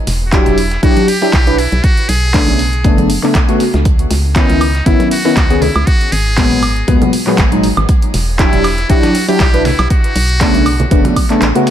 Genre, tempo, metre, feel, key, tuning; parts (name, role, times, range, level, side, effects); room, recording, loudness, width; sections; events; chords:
deep house; 119 BPM; 4/4; swing 55% on 16ths; A4 = 442 Hz
organ-like FM bass; bass; 0.1-11.5 s; E1 to D#2; -16 LUFS; equal; sidechain pumping
dusty soul sampler-style drum kit; drums; 0.1-11.7 s; hi-hat, snare drum; -29 LUFS; equal
punchy analog drum machine; drums; 0.1-11.7 s; handclaps, hi-hat, woodblock; -20 LUFS; right 2 dB
trumpet with metal mute; melody; 0.3-11.4 s; D#4 to G#4; -20 LUFS; equal; tape echo
warm analog keys; stabs; 0.3-11.7 s; A#2 to B4; -14 LUFS; left 1 dB; chorus, sidechain pumping, low-pass filter, digital delay
electronic kick drum; drums; 0.3-11.3 s; -13 LUFS; equal
congas; percussion; 1.0-11.1 s; -20 LUFS; right 2 dB
digital ambience; -9 LUFS; side -10 dB against mid
0.0-11.7 A section
filter sweep on synth keys 0.0-11.7; kick drops out 11.4
0.0 Em9; 1.6 Bm9; 3.9 C#m9; 5.9 G#m9; 7.9 Em9; 9.7 Bm9